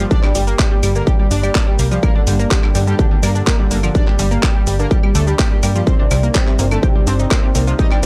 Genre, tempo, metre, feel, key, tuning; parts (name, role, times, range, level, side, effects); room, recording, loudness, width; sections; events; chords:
melodic techno; 125 BPM; 4/4; straight; G minor; A4 = 442 Hz
fat analog lead; melody; 0.0-8.1 s; C3 to Eb4; -27 LUFS; equal; analog chorus, sidechain pumping
warm chamber violin section; second line; 0.0-8.1 s; C4 to Eb5; -32 LUFS; equal; sidechain pumping, analog delay
dark analog pad; sustained chords; 0.0-8.1 s; Bb3 to D5; -30 LUFS; equal; chorus, phaser, sidechain pumping
analog pluck; arpeggios; 0.0-8.1 s; D3 to G5; -26 LUFS; equal; chorus, sidechain pumping, analog delay
plucky analog bass; bass; 0.0-8.1 s; G1 to G2; -19 LUFS; equal; sidechain pumping
electronic kick drum; drums; 0.1-7.9 s; -17 LUFS; equal; distortion
house drum kit; drums; 0.1-8.1 s; claves, handclaps, hi-hat, shaker; -26 LUFS; equal
little or no reverb; dry, gritty hardware recording; -15 LUFS; mono
0.0-8.1 A section
0.0 Gm; 5.9 Cmadd9